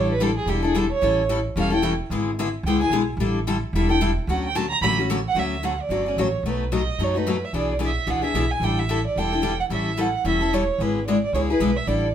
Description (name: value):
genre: acoustic string swing (jazz manouche)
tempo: 221 BPM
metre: 4/4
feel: swing 57% on 8ths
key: D major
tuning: A4 = 440 Hz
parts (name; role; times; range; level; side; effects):
- warm violin; melody; 0.0-12.1 s; G4 to B5; -25 LUFS; right 5 dB; none
- picked steel-string acoustic guitar; accompaniment; 0.0-12.1 s; B2 to A4; -23 LUFS; left 4 dB; none
- upright bass; bass; 0.0-12.1 s; E1 to F#2; -26 LUFS; right 1 dB; none
room: moderate studio reverb, RT60 0.6 s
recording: band playing live in one room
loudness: -20 LUFS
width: side -9 dB against mid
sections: 0.0-5.4 A section; 5.4-12.1 B section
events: violin solo 0.0-5.4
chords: 0.0 A7sus4; 1.0 A7; 2.1 E7/G#; 3.2 A7sus4; 4.3 Dmaj7; 6.4 B7; 7.5 E7/B; 8.6 A7sus4; 9.7 A7; 10.8 E7/G#